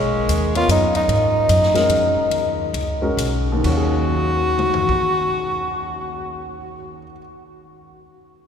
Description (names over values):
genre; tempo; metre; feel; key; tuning
modal jazz; 127-150 BPM; 3/4; swing 65% on 8ths; Eb minor; A4 = 442 Hz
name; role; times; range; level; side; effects
breathy tenor saxophone; melody; 0.0-7.1 s; Ab3 to Gb4; -20 LUFS; equal; none
upright bass; bass; 0.0-7.0 s; Cb2 to Ab2; -23 LUFS; equal; none
swinging big-band drum kit; drums; 0.3-5.0 s; crash cymbal, hi-hat, kick drum, ride cymbal, snare drum, toms; -29 LUFS; left 3 dB; none
warm grand piano; accompaniment; 0.6-7.2 s; Eb2 to F5; -26 LUFS; left 2 dB; none
room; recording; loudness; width
wet cathedral reverb, RT60 5.9 s; recorded in a church or concert hall; -16 LUFS; side -8 dB against mid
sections
0.0-3.6 A section; 3.6-6.5 B section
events
slowing down 1.1-3.6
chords
0.0 Abm11; 3.6 Ebm11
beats
0.29 0.69 | 1.09 1.49 1.90 | 2.31 2.74 3.18 | 3.64 4.12 4.59 | 5.06 5.53 6.00